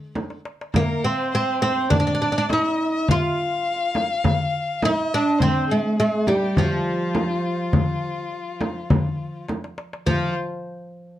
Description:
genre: Arabic maqam ensemble.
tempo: 103 BPM.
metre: 4/4.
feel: straight.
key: F maqam rast.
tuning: A4 = 440 Hz.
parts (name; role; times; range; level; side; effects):
oud; melody; 0.0-10.3 s; F3 to F4; -22 LUFS; right 1 dB; none.
darbuka; percussion; 0.2-10.3 s; none; -25 LUFS; left 3 dB; none.
frame drum; percussion; 0.2-10.3 s; none; -24 LUFS; right 1 dB; none.
rich violin; second line; 0.8-10.3 s; F4 to F5; -27 LUFS; left 4 dB; none.
room: moderate studio reverb, RT60 0.5 s.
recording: dark, warm production.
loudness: -20 LUFS.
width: side -13 dB against mid.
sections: 0.0-10.1 A section; 10.1-11.2 B section.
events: drum fill 0.2-0.8, 9.5-10.1.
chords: none.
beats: 0.17 | 0.75 1.33 1.92 2.50 | 3.08 3.66 4.25 4.83 | 5.41 5.99 6.57 7.16 | 7.74 8.32 8.90 9.48 | 10.06.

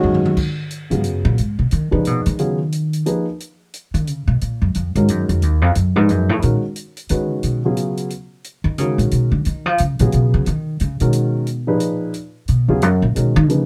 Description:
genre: modal jazz.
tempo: 178 BPM.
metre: 3/4.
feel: swing 62% on 8ths.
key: G# dorian.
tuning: A4 = 436 Hz.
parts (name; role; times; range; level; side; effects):
warm baby grand piano; accompaniment; 0.0-13.7 s; A#2 to B4; -22 LUFS; equal; none.
upright bass; bass; 0.0-13.7 s; D#2 to E#3; -19 LUFS; equal; none.
open jazz drum kit; drums; 0.0-13.6 s; crash cymbal, hi-hat, kick drum, toms; -30 LUFS; equal; none.
room: light reverb.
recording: none.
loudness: -19 LUFS.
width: mono.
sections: 0.4-13.7 A section.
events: drum fill 0.0-0.4; upright bass solo 0.4-13.7.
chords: 0.4 G#m11.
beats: 0.03 | 0.37 0.70 1.04 | 1.38 1.72 2.05 | 2.39 2.73 3.06 | 3.40 3.73 4.07 | 4.41 4.74 5.08 | 5.42 5.75 6.09 | 6.43 6.76 7.10 | 7.43 7.77 8.11 | 8.45 8.78 9.12 | 9.45 9.79 10.13 | 10.46 10.80 11.14 | 11.47 11.81 12.14 | 12.48 12.82 13.15 | 13.49.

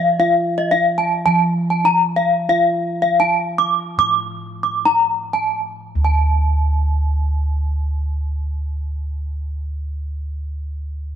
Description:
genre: Balinese gamelan.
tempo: 57-122 BPM.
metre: 4/4.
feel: straight.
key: unclear.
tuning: A4 = 440 Hz.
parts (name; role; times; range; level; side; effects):
gamelan-type bronze metallophone; arpeggios; 0.0-9.7 s; Eb5+20c to D6; -16 LUFS; left 1 dB; none.
gamelan-type bossed gongs; bass; 0.0-9.6 s; D2 to F4-30c; -21 LUFS; right 1 dB; none.
room: moderate spring reverb, RT60 2.2 s.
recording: heard from further back in the room.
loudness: -16 LUFS.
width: side -9 dB against mid.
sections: 0.0-5.8 A section; 5.8-10.1 B section.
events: slowing down 0.2-5.8.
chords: none.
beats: | 0.20 0.71 1.26 1.85 | 2.50 3.21 3.99 4.86 | 5.85 6.91 7.97 9.03.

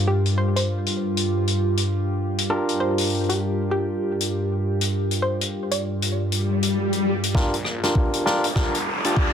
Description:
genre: glitch hop.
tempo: 99 BPM.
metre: 4/4.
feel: swing 61% on 16ths.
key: G minor.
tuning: A4 = 440 Hz.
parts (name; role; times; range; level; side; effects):
warbly tape-like pad; sustained chords; 0.0-9.3 s; G2 to Bb4; -24 LUFS; equal; chorus, built-in reverb, phaser, vintage 12-bit sampler grit, sidechain pumping.
barky tine electric piano; stabs; 0.0-9.3 s; D4 to D5; -27 LUFS; right 1 dB; vintage 12-bit sampler grit, sidechain pumping, low-pass filter, tape echo.
woody wave-folded pluck; melody; 0.1-6.6 s; G4 to D5; -29 LUFS; right 1 dB; chorus, cassette tape, tape echo.
vintage drum kit; drums; 0.3-9.1 s; hi-hat, rim click, snare drum; -27 LUFS; left 4 dB; low-pass filter on hats, low-pass filter on snare, low-pass filter on room.
swell and riser; sound effects; 6.3-9.3 s; none; -25 LUFS; left 3 dB; none.
phased detuned saw bass; bass; 7.3-9.3 s; F1 to D2; -32 LUFS; equal; phaser, high-pass filter.
electronic kick drum; drums; 7.3-9.3 s; none; -22 LUFS; equal; none.
room: moderate studio reverb, RT60 0.5 s.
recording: none.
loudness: -20 LUFS.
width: side -8 dB against mid.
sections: 0.0-7.3 A section; 7.3-9.3 B section.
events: swell 6.3-7.3; build-up 7.3-9.3; drum fill 7.3-9.3; riser 7.3-9.3; filter sweep on tine electric piano 7.3-9.3; filter sweep on ambient pad 7.3-9.3.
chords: 0.0 Gm7.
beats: | 0.08 0.68 1.29 1.90 | 2.50 3.11 3.71 4.32 | 4.92 5.53 6.14 6.74 | 7.35 7.96 8.56 9.17.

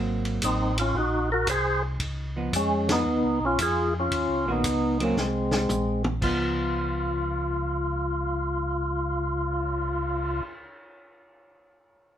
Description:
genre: soul jazz organ trio.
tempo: 114 BPM.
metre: 4/4.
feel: swing 68% on 8ths.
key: Db mixolydian.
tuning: A4 = 436 Hz.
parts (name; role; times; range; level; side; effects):
hollow-body jazz guitar; accompaniment; 0.0-10.5 s; Eb3 to Gb4; -32 LUFS; right 2 dB; none.
mellow tonewheel organ; bass; 0.0-10.4 s; Ab1 to F2; -30 LUFS; equal; chorus vibrato, slow rotary speaker.
warm soul drum kit; drums; 0.2-10.3 s; crash cymbal, cymbal swell, hi-hat, kick drum, ride cymbal, snare drum, toms; -33 LUFS; equal; none.
percussive tonewheel organ; melody; 0.4-10.4 s; Ab3 to C5; -25 LUFS; equal; slow rotary speaker.
room: moderate studio reverb, RT60 0.7 s.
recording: band playing live in one room.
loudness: -24 LUFS.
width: side -10 dB against mid.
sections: 0.0-6.2 A section; 6.2-10.4 B section.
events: band accent 2.8; drum fill 5.2-6.2.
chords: 0.0 Ab9; 2.0 Db9; 4.1 Ebm7; 5.2 Abadd9; 6.2 Db9.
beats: 0.43 0.95 1.48 | 2.01 2.53 3.06 3.58 | 4.11 4.64 5.16 5.69 | 6.22 6.74 7.27 7.80 | 8.32 8.85 9.37 9.90.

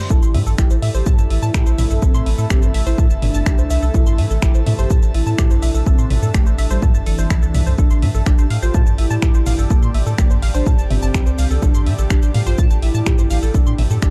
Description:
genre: melodic techno.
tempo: 125 BPM.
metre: 4/4.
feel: straight.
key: A phrygian.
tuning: A4 = 440 Hz.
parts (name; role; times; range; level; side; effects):
evolving wavetable pad; sustained chords; 0.0-14.1 s; Bb2 to G4; -35 LUFS; equal; phaser, built-in reverb, sidechain pumping.
tight sequenced synth; arpeggios; 0.0-14.1 s; E4 to C6; -32 LUFS; equal; chorus, phaser, sidechain pumping, tape echo.
airy breathy pad; texture; 0.0-14.1 s; G4 to A5; -34 LUFS; equal; chorus, sidechain pumping.
soft octave-layered synth lead; melody; 0.1-14.1 s; E3 to G4; -28 LUFS; equal; chorus, tremolo, sidechain pumping, digital delay.
round analog bass; bass; 0.1-14.1 s; G1 to A2; -21 LUFS; equal; sidechain pumping.
electronic kick drum; drums; 0.1-14.1 s; none; -17 LUFS; equal; none.
punchy analog drum machine; drums; 0.1-14.1 s; finger snaps, hi-hat, shaker, toms; -27 LUFS; equal; sidechain pumping on perc, sidechain pumping on toms, sidechain pumping on hats.
room: little or no reverb.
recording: dark, warm production.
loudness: -16 LUFS.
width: mono.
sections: 0.0-14.1 A section.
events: none.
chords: 0.1 Am; 7.8 Gm.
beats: | 0.10 0.58 1.06 1.54 | 2.02 2.50 2.98 3.46 | 3.94 4.42 4.90 5.38 | 5.86 6.34 6.82 7.30 | 7.78 8.26 8.74 9.22 | 9.70 10.18 10.66 11.14 | 11.62 12.10 12.58 13.06 | 13.54 14.02.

